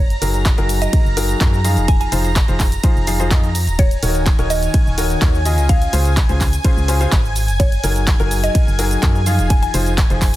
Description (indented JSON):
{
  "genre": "piano house",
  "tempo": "126 BPM",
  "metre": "4/4",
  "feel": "straight",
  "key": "unclear",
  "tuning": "A4 = 440 Hz",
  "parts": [
    { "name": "mallet-like synth pluck", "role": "melody", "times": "0.0-9.7 s", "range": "Db5 to Ab5", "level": "-25 LUFS", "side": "right 1 dB", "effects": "chorus, phaser, tape echo" },
    { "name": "analog string pad", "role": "sustained chords", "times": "0.0-10.4 s", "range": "Ab5 to Bb6", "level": "-27 LUFS", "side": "right 1 dB", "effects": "ensemble chorus, sidechain pumping" },
    { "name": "organ-like FM bass", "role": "bass", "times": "0.0-10.4 s", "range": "Eb1 to Gb2", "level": "-18 LUFS", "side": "equal", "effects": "sidechain pumping" },
    { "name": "punchy analog drum machine", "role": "drums", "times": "0.1-10.4 s", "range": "handclaps, hi-hat, ride cymbal, shaker", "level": "-24 LUFS", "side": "right 1 dB", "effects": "none" },
    { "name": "bright grand piano", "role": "riff", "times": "0.2-10.3 s", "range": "Db3 to F5", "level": "-22 LUFS", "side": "left 2 dB", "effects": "sidechain pumping, tape echo" },
    { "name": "tambourine", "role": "percussion", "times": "0.2-10.4 s", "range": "none", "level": "-36 LUFS", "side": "left 5 dB", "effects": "none" },
    { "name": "electronic kick drum", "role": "drums", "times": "0.5-10.3 s", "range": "none", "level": "-15 LUFS", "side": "equal", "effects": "none" }
  ],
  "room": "little or no reverb",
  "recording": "dense, heavily limited modern master",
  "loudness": "-14 LUFS",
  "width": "side -15 dB against mid",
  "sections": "0.0-10.4 A section",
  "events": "none",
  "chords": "0.0 Gb69; 1.9 Fm7; 3.8 Ebm7; 5.5 Dbmaj7; 7.4 Gb69; 9.5 Fm7"
}